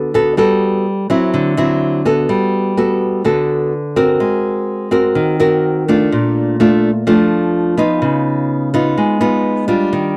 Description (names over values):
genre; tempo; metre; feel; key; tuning
bossa nova; 126 BPM; 4/4; straight; unclear; A4 = 440 Hz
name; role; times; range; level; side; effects
nylon-string guitar; solo; 0.0-10.2 s; Bb2 to Bb4; -15 LUFS; equal; none
room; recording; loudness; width
light reverb; dry, close 1970s-style studio recording; -15 LUFS; mono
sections
0.0-2.3 A section; 2.3-10.2 B section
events
none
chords
0.0 Gmaj9; 1.3 D9; 2.3 Gmaj9; 4.2 Ab9; 6.1 Bbmaj7; 8.0 C#9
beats
| 0.38 0.85 1.33 1.81 | 2.29 2.76 3.24 3.72 | 4.20 4.67 5.15 5.63 | 6.11 6.58 7.06 7.54 | 8.02 8.49 8.97 9.45 | 9.92